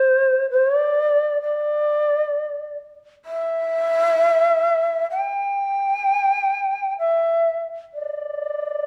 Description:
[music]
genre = japanese traditional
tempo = 65 BPM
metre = 4/4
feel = rubato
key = unclear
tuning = A4 = 442 Hz
[part]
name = reedy long shakuhachi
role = solo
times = 0.0-8.9 s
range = C5 to G5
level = -21 LUFS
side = equal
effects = none
[sound]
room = moderate recital hall reverb, RT60 1.5 s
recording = none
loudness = -21 LUFS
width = mono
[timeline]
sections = 0.0-8.9 A section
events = none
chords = none

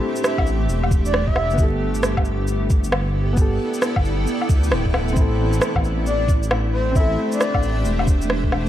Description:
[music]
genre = future garage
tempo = 134 BPM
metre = 4/4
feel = swing 63% on 16ths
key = A minor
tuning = A4 = 436 Hz
[part]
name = felt-muted upright piano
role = accompaniment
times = 0.0-8.7 s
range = B3 to A4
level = -28 LUFS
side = left 1 dB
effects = sidechain pumping, ping-pong delay
[part]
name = granular cloud pad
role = sustained chords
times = 0.0-8.7 s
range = A3 to G5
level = -26 LUFS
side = equal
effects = built-in reverb, sidechain pumping
[part]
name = breathy flute-like synth lead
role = melody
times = 0.2-1.6, 6.1-7.8 s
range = C5 to E5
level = -26 LUFS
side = left 1 dB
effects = lush chorus, tape echo
[part]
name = electronic shaker, rim click and woodblock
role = drums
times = 0.2-8.7 s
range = none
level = -24 LUFS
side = equal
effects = overdrive
[part]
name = dark detuned saw bass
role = bass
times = 0.4-8.7 s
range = D1 to D2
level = -22 LUFS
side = equal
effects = sidechain pumping
[part]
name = electronic kick drum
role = drums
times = 0.4-8.5 s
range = none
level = -18 LUFS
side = equal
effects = none
[sound]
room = light reverb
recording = dark, warm production, vinyl crackle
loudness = -17 LUFS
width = side -12 dB against mid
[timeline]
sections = 0.0-8.7 A section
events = none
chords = 0.0 Am; 1.6 Gadd9; 5.2 Am

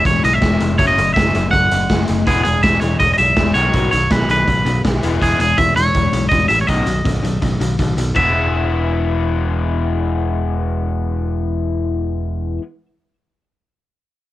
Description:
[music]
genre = indie rock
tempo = 163 BPM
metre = 4/4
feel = straight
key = E major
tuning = A4 = 440 Hz
[part]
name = twangy electric guitar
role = melody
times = 0.0-12.6 s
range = G#4 to F#5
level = -17 LUFS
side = right 1 dB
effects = none
[part]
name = raw garage guitar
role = riff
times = 0.0-12.6 s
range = B2 to G#4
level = -21 LUFS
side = left 6 dB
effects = overdrive, cassette tape
[part]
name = modern bright picked electric bass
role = bass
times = 0.1-12.6 s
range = E1 to B1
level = -19 LUFS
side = right 1 dB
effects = none
[part]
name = raw garage drum kit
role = drums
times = 0.1-8.2 s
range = crash cymbal, hi-hat, kick drum, snare drum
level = -20 LUFS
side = right 1 dB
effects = cassette tape
[sound]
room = small room reverb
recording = home recording on cassette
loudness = -14 LUFS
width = side -15 dB against mid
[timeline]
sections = 0.0-8.2 A section; 8.2-11.1 B section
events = none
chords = 0.0 E; 0.8 F#m; 2.3 E; 3.5 Badd9; 5.0 E; 6.7 B; 8.2 E

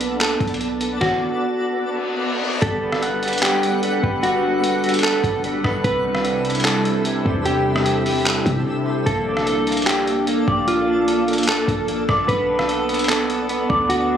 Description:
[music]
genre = hip hop, atmospheric cloud-rap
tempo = 149 BPM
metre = 4/4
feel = half-time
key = G major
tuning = A4 = 440 Hz
[part]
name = mellow electric guitar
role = melody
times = 0.0-14.2 s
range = F4 to B4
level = -22 LUFS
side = equal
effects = low-pass filter, ping-pong delay
[part]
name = warbly tape-like pad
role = sustained chords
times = 0.0-14.2 s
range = C3 to F#5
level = -23 LUFS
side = right 1 dB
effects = chorus, built-in reverb, sidechain pumping
[part]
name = clean 808-style bass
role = bass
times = 0.0-14.2 s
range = G1 to C3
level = -29 LUFS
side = equal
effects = none
[part]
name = trip hop sampler-style drum kit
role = drums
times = 0.0-14.0 s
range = handclaps, hi-hat, kick drum, rim click, snare drum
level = -24 LUFS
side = equal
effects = overdrive
[part]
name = twinkling granular texture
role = texture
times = 0.0-14.2 s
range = G3 to F#5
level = -30 LUFS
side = left 1 dB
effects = built-in reverb
[part]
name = reverse cymbal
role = sound effects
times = 1.9-2.6 s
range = none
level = -26 LUFS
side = left 3 dB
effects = none
[part]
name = electric guitar through a small old amp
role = arpeggios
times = 2.6-14.2 s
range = C3 to F#5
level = -25 LUFS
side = right 1 dB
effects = tremolo, low-pass filter, ping-pong delay
[sound]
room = light reverb, digital ambience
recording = recorded on a phone in the room, studio reverb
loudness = -17 LUFS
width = side -8 dB against mid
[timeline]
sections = 0.0-2.6 A section; 2.6-14.2 B section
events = reverse cymbal 1.9-2.6; break 8.7-9.1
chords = 0.0 Bm7; 2.6 Gmaj7; 5.8 C6; 9.1 Bbmaj7; 12.3 Bm7

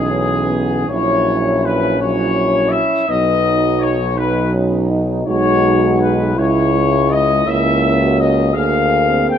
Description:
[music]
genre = classical, hymn-like piece for brass band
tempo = 55 BPM (dotted quarters)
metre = 6/8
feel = rubato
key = B major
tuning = A4 = 440 Hz
[part]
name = dark trumpet section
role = melody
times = 0.0-9.4 s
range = G#4 to G5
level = -18 LUFS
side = left 5 dB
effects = none
[part]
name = mellow French horn section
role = second line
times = 0.0-9.4 s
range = C#4 to G#4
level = -22 LUFS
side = right 8 dB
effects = none
[part]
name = mellow trombone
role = accompaniment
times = 0.0-9.4 s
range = E3 to B#3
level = -22 LUFS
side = right 3 dB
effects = none
[part]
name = warm euphonium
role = accompaniment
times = 0.0-9.4 s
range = A#3 to F#4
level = -21 LUFS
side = left 2 dB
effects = none
[part]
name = clear tuba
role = bass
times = 0.0-9.4 s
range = A#1 to D2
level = -19 LUFS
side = equal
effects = none
[sound]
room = light reverb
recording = close, detailed microphones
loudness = -13 LUFS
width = side -9 dB against mid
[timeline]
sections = 0.0-9.4 A section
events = none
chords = 0.0 C#m7/B; 0.9 F#7/A#; 3.1 B; 5.3 G#m/B; 6.4 C#m; 7.5 A#dim/C#; 8.5 A#7/D

